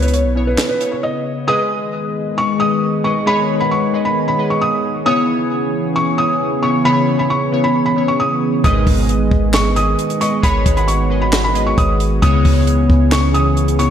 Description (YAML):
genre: hip hop, trap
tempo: 134 BPM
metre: 4/4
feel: half-time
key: G# minor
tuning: A4 = 440 Hz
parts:
  - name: felt-muted upright piano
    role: melody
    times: 0.0-13.9 s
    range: B4 to D#6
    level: -19 LUFS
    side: equal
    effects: low-pass filter, diffuse ambient delay
  - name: glassy digital keys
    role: accompaniment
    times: 0.0-13.9 s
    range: C#3 to F#5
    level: -19 LUFS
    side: left 2 dB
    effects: chorus, low-pass filter
  - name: warm 808-style bass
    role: bass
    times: 0.0-0.6, 8.6-13.9 s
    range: G#1 to C#2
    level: -17 LUFS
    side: equal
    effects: none
  - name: compact cocktail drum kit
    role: drums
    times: 0.0-0.9, 8.6-13.9 s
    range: handclaps, hi-hat, kick drum, snare drum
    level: -18 LUFS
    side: equal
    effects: none
  - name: dark analog pad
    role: sustained chords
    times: 1.8-13.9 s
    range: D#3 to G#4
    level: -21 LUFS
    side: right 1 dB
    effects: chorus
  - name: chorused polysynth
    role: stabs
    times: 8.6-9.1, 12.2-12.7 s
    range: B1 to G#3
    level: -23 LUFS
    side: left 1 dB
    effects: none
room: moderate lush hall reverb, RT60 1.9 s, small room ambience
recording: dreamy mix soaked in reverb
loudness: -13 LUFS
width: side -9 dB against mid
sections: 0.0-1.5 A section; 1.5-13.9 B section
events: break 1.0-1.5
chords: 0.0 C#m7; 1.5 G#m; 5.1 C#m7; 8.6 G#m; 12.2 C#m7